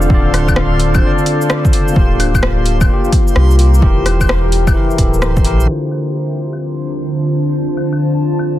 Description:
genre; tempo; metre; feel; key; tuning
future garage; 129 BPM; 4/4; swing 65% on 16ths; D minor; A4 = 440 Hz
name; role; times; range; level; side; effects
tine electric piano; accompaniment; 0.0-8.6 s; D3 to D5; -19 LUFS; left 2 dB; medium stereo tremolo, vintage 12-bit sampler grit, sidechain pumping, tape echo
deep dark ambient pad; sustained chords; 0.0-8.6 s; D3 to F5; -19 LUFS; equal; chorus, built-in reverb, vintage 12-bit sampler grit, sidechain pumping
warm sub bass; bass; 0.0-5.7 s; D1 to C2; -13 LUFS; equal; sidechain pumping
deep house drum kit; drums; 0.0-8.5 s; claves, hi-hat, rim click, shaker; -20 LUFS; left 1 dB; overdrive, low-pass filter on perc, low-pass filter on snare, low-pass filter on hats
backwards swelling texture; texture; 0.0-8.6 s; C5 to A5; -29 LUFS; right 3 dB; built-in reverb
electronic kick drum; drums; 0.1-5.4 s; none; -14 LUFS; equal; overdrive
room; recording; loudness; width
digital ambience; dense, heavily limited modern master, vinyl crackle, low-pass filter; -11 LUFS; side -14 dB against mid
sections
0.0-5.7 A section; 5.7-8.6 B section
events
filter sweep 5.7-8.6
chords
0.0 Dm7; 2.0 Gm7/D; 3.8 Edim; 5.7 Dm7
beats
| 0.10 0.57 1.03 1.50 | 1.96 2.43 2.89 3.36 | 3.82 4.29 4.75 5.22 | 5.68 6.15 6.61 7.08 | 7.54 8.01 8.47

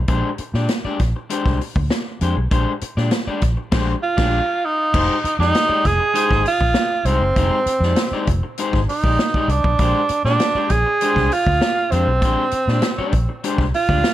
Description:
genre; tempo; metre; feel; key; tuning
funk; 99 BPM; 4/4; straight; F dorian; A4 = 439 Hz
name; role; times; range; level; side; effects
vintage muted fingered electric bass; bass; 0.0-14.0 s; F1 to Bb2; -20 LUFS; equal; none
electric guitar at the edge of break-up; accompaniment; 0.1-14.1 s; Ab3 to D5; -24 LUFS; left 4 dB; none
swinging big-band drum kit; drums; 0.1-14.1 s; crash cymbal, hi-hat, kick drum, snare drum; -22 LUFS; equal; none
breathy tenor saxophone; melody; 4.0-14.1 s; C4 to Ab4; -19 LUFS; right 3 dB; none
room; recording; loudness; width
light reverb; none; -16 LUFS; side -13 dB against mid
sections
0.0-4.9 A section; 4.9-14.1 B section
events
band accent 3.7-4.9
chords
0.1 Bb13; 4.9 Fm9; 9.8 Bb13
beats
| 0.09 0.70 1.30 1.91 | 2.52 3.12 3.73 4.34 | 4.94 5.55 6.16 6.76 | 7.37 7.98 8.58 9.19 | 9.80 10.40 11.01 11.62 | 12.22 12.83 13.43 14.04

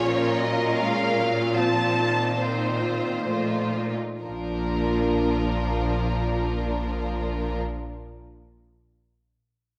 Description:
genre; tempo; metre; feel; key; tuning
classical, slow romantic movement for string orchestra; 59-83 BPM; 3/4; rubato; unclear; A4 = 439 Hz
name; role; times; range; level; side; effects
rich studio violin section; melody; 0.0-7.6 s; Bb4 to A5; -32 LUFS; equal; none
rich studio violin section; second line; 0.0-7.6 s; D4 to Bb4; -31 LUFS; equal; none
rich chamber viola section; accompaniment; 0.0-7.6 s; Eb3 to Db4; -32 LUFS; equal; none
clear studio cello section; bass; 0.0-7.6 s; Bb2; -31 LUFS; equal; none
rich studio double bass section; bass; 4.2-7.6 s; Bb1; -32 LUFS; equal; none
room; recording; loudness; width
moderate scoring stage reverb, RT60 1.5 s; none; -25 LUFS; mono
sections
0.0-4.2 A section; 4.2-9.8 B section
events
slowing down 0.0-4.2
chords
0.0 Bbm; 1.6 F7/Bb; 4.2 Bb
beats
0.04 0.79 | 1.57 2.40 3.28 | 4.24 5.17 6.09 | 7.01

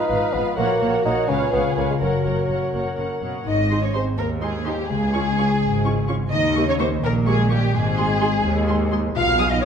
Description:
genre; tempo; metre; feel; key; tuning
cinematic; 84 BPM (dotted quarters); 6/8; straight; F# major, Ab major from 3.5 s; A4 = 440 Hz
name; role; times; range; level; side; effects
muted studio violin section; melody; 0.0-9.7 s; F5 to D#6; -31 LUFS; left 2 dB; none
muted studio violin section; second line; 0.0-9.7 s; F#4 to E#5; -25 LUFS; equal; none
mellow bassoon; accompaniment; 0.0-3.2 s; F#3 to D#4; -24 LUFS; right 1 dB; none
muted studio viola section; accompaniment; 0.0-9.5 s; F#3 to C#5; -29 LUFS; right 2 dB; none
dark French horn section; sustained chords; 0.0-9.6 s; G3 to C#5; -26 LUFS; left 3 dB; none
concert harp; arpeggios; 0.0-9.7 s; F#2 to Eb5; -28 LUFS; left 7 dB; none
muted chamber cello section; bass; 0.1-9.7 s; Db2 to C#3; -27 LUFS; right 3 dB; none
muted studio double bass section; bass; 0.1-9.7 s; F#1 to Eb2; -27 LUFS; right 4 dB; none
room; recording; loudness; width
wet scoring stage reverb, RT60 1.6 s; none; -18 LUFS; side -7 dB against mid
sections
0.0-3.5 A section; 3.5-9.7 B section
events
none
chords
0.0 Fdim/Ab; 0.6 F#/A#; 1.3 C#7; 2.0 F#; 3.5 Ab; 4.9 Db; 6.3 Eb7; 7.7 Ab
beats
| 0.58 1.29 | 2.01 2.74 | 3.46 4.18 | 4.89 5.61 | 6.32 7.03 | 7.74 8.45 | 9.16

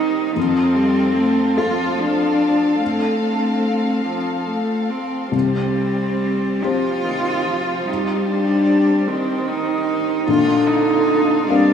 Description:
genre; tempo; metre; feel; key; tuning
neoclassical piano and strings; 45-51 BPM (dotted quarters); 6/8; rubato; C dorian; A4 = 444 Hz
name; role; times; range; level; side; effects
warm cello; second line; 0.0-11.7 s; C4 to F4; -19 LUFS; right 1 dB; none
felt-muted upright piano; accompaniment; 0.0-11.7 s; Bb1 to F5; -22 LUFS; left 5 dB; none
warm viola; accompaniment; 0.0-11.7 s; D3 to C4; -22 LUFS; left 1 dB; none
dark chamber string section; sustained chords; 0.0-11.7 s; C4 to F5; -27 LUFS; left 2 dB; none
room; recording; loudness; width
wet huge ambient reverb, RT60 4.0 s; dreamy mix soaked in reverb, studio reverb; -16 LUFS; side -8 dB against mid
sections
0.0-11.7 A section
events
none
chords
0.4 F; 5.3 Cm; 10.3 Bbadd9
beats
| 0.36 1.57 | 2.80 4.06 | 5.33 6.64 | 7.88 9.08 | 10.28 11.49

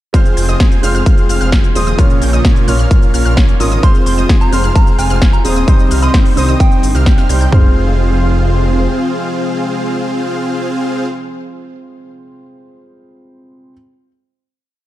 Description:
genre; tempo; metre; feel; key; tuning
EDM, festival progressive house; 130 BPM; 4/4; straight; F minor; A4 = 440 Hz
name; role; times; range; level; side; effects
dark baby grand piano; accompaniment; 0.1-13.7 s; Bb2 to Db5; -21 LUFS; right 2 dB; sidechain pumping, ping-pong delay
lush unison pad; sustained chords; 0.1-11.1 s; C3 to F4; -24 LUFS; equal; chorus, sidechain pumping
wide unison pluck; arpeggios; 0.1-11.1 s; Eb6 to Ab6; -24 LUFS; equal; sidechain pumping, ping-pong delay
dense compressed supersaw; riff; 0.1-11.1 s; C4 to Ab5; -20 LUFS; equal; sidechain pumping, ping-pong delay
big-room dance drum kit; drums; 0.1-7.6 s; kick drum, toms; -10 LUFS; equal; none
big-room dance drum kit; drums; 0.1-7.5 s; cabasa, hi-hat, snare drum; -21 LUFS; equal; none
wide detuned saw bass; bass; 0.4-8.9 s; Eb1 to C2; -14 LUFS; equal; chorus, sidechain pumping
soft synth bell; melody; 3.8-7.2 s; G5 to C6; -23 LUFS; right 2 dB; chorus, ping-pong delay
room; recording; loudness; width
light reverb; dark, warm production; -10 LUFS; side -14 dB against mid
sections
0.1-7.5 drop; 7.5-11.2 final chord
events
drop 0.1-7.5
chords
0.1 Fm; 2.0 Bbm; 3.8 Fm; 5.7 Cm; 7.5 Fm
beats
| 0.14 0.60 1.06 1.52 | 1.99 2.45 2.91 3.37 | 3.83 4.29 4.75 5.22 | 5.68 6.14 6.60 7.06 | 7.52 7.99 8.45 8.91 | 9.37 9.83 10.29 10.76

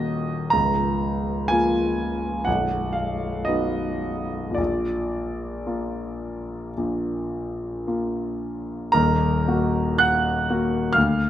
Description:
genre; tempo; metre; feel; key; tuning
classical, romantic nocturne for solo piano; 53-66 BPM; 4/4; rubato; Eb minor; A4 = 440 Hz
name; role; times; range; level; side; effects
clear grand piano; solo; 0.0-11.3 s; B0 to Gb6; -21 LUFS; equal; none
room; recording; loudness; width
moderate recital hall reverb, RT60 1.7 s; close, detailed microphones; -22 LUFS; side -11 dB against mid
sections
0.0-9.0 A section; 9.0-11.3 B section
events
none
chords
0.0 Ebm; 0.5 Bbm/Db; 2.5 B; 4.6 Bb; 9.0 Ebm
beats
| 0.54 1.51 2.47 3.47 | 4.58 5.67 6.77 7.88 | 8.95 10.01 10.96

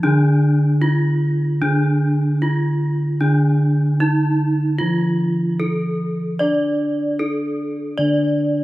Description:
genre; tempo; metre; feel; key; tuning
Javanese gamelan; 75 BPM; 4/4; straight; unclear; A4 = 440 Hz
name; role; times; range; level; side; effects
gamelan-type bronze metallophone; melody; 0.0-8.6 s; D4 to D5; -22 LUFS; equal; none
gamelan-type bronze metallophone; accompaniment; 0.0-8.6 s; D3 to D4; -18 LUFS; equal; none
gamelan-type bossed gongs; bass; 0.0-8.6 s; D3 to D5; -27 LUFS; left 1 dB; none
room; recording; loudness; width
light reverb, small room reverb; rough home demo mix; -16 LUFS; side -17 dB against mid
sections
0.0-8.6 A section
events
none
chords
none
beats
| 0.03 0.82 1.62 2.42 | 3.21 4.01 4.80 5.60 | 6.39 7.19 7.98

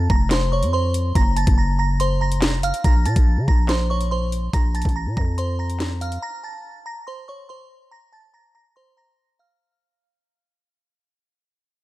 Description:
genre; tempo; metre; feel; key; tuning
hip hop, drill; 142 BPM; 4/4; half-time; Bb harmonic minor; A4 = 440 Hz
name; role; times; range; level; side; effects
glassy synth bell; melody; 0.0-9.6 s; C5 to Bb6; -26 LUFS; right 2 dB; chorus, low-pass filter
growling 808-style bass; bass; 0.0-6.2 s; F1 to Db3; -21 LUFS; equal; none
drill drum kit; drums; 0.1-6.2 s; handclaps, hi-hat, kick drum, snare drum; -20 LUFS; equal; none
room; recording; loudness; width
little or no reverb; dark, warm production; -18 LUFS; side -17 dB against mid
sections
0.0-2.8 A section; 2.8-9.6 B section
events
fade-out 2.8-9.6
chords
0.0 F5; 1.2 Gb; 2.8 Bbsus2; 6.2 Bbmaj7(no3); 7.9 N.C.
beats
0.31 0.73 | 1.15 1.58 2.00 2.42 | 2.84 3.27 3.69 4.11 | 4.53 4.96 5.38 5.80 | 6.22 6.65 7.07 7.49 | 7.91 8.34 8.76 9.18

